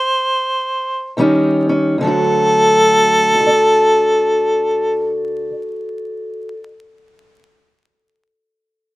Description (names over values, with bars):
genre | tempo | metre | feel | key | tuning
acoustic country blues, solo or duo | 71-86 BPM | 4/4 | swing 63% on 8ths | D major | A4 = 440 Hz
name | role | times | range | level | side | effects
warm harmonica | melody | 0.0-5.2 s | A4 to D5 | -13 LUFS | equal | none
fingerpicked steel-string acoustic guitar | accompaniment | 1.2-6.6 s | D2 to D5 | -16 LUFS | equal | slapback echo
room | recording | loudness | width
little or no reverb | recorded outdoors, with no room sound, vinyl crackle | -12 LUFS | side -18 dB against mid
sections
0.0-2.0 A section; 2.0-5.4 B section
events
slowing down 0.0-2.0; stop 0.0-1.2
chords
0.0 N.C.; 1.2 Eb7; 2.0 D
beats
0.43 1.19 | 1.99 2.83 3.67 4.51